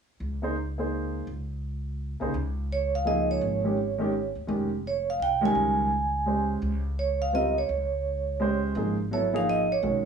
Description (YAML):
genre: modal jazz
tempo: 168 BPM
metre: 3/4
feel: swing 63% on 8ths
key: Db lydian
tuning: A4 = 440 Hz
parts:
  - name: upright bass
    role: bass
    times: 0.2-10.1 s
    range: F1 to D2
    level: -32 LUFS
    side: equal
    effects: none
  - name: warm baby grand piano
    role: accompaniment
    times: 0.4-10.0 s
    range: Db3 to C5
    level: -28 LUFS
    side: equal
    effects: none
  - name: vibraphone with medium mallets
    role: melody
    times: 2.7-10.1 s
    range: Db5 to Ab5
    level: -26 LUFS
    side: right 4 dB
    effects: none
room: light reverb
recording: small room ambience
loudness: -25 LUFS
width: side -6 dB against mid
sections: 0.2-2.3 A section; 2.3-10.1 B section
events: none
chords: 0.2 Dbsus2; 2.3 Dbmaj9